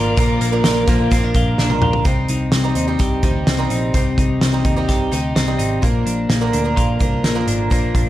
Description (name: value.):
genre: jangly indie pop.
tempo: 127 BPM.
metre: 4/4.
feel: straight.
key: unclear.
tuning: A4 = 441 Hz.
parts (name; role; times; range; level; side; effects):
picked twelve-string acoustic guitar; accompaniment; 0.0-8.1 s; Bb2 to Bb4; -22 LUFS; right 5 dB; none.
clear studio string section; sustained chords; 0.0-2.0 s; Bb4 to D6; -31 LUFS; left 1 dB; none.
twelve-string electric guitar; arpeggios; 0.0-8.1 s; Bb2 to G4; -21 LUFS; left 4 dB; analog delay.
vintage muted picked electric bass; bass; 0.0-8.1 s; Ab1 to Eb2; -21 LUFS; equal; none.
loose indie drum kit; drums; 0.2-8.1 s; hi-hat, kick drum, snare drum, toms; -19 LUFS; equal; none.
room: small room ambience.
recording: dark, warm production.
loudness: -15 LUFS.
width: side -14 dB against mid.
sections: 0.0-2.1 A section; 2.1-8.1 B section.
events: drum fill 1.6-2.1.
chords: 0.0 Bb; 2.1 Cm; 5.8 Bb.